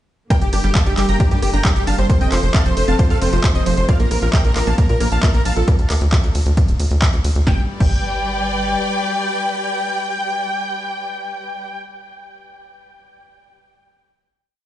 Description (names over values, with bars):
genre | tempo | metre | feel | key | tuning
uplifting trance | 134 BPM | 4/4 | straight | G minor | A4 = 441 Hz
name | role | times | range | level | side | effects
dense compressed supersaw | melody | 0.3-11.8 s | G4 to Bb5 | -24 LUFS | equal | sidechain pumping, dub echo
supersaw stab | second line | 0.3-11.8 s | G4 to Bb5 | -31 LUFS | equal | analog chorus, sidechain pumping, dub echo
rich studio string section | sustained chords | 0.3-11.7 s | C3 to D5 | -27 LUFS | left 2 dB | sidechain pumping
wide unison pluck | arpeggios | 0.3-7.9 s | F3 to F4 | -26 LUFS | right 2 dB | sidechain pumping, dub echo
electronic kick drum | drums | 0.3-7.9 s | none | -16 LUFS | equal | overdrive
techno drum kit | drums | 0.3-7.9 s | crash cymbal, handclaps, hi-hat, ride cymbal, rim click, snare drum | -25 LUFS | equal | overdrive
tight sequencer bass | bass | 0.4-8.8 s | D1 to Bb2 | -19 LUFS | equal | sidechain pumping
room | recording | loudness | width
little or no reverb | played on a big sound system in a bare room, stone room reverb, nothing above 10.4 kHz | -15 LUFS | side -13 dB against mid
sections
0.3-7.5 drop; 7.5-11.1 final chord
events
drop 0.3-7.5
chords
0.3 Gm; 2.1 F; 3.9 Bbsus2; 5.7 N.C.; 7.5 G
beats
| 0.30 0.75 1.20 1.65 | 2.10 2.54 2.99 3.44 | 3.89 4.33 4.78 5.23 | 5.68 6.12 6.57 7.02 | 7.47 7.92 8.36 8.81 | 9.26 9.71 10.15 10.60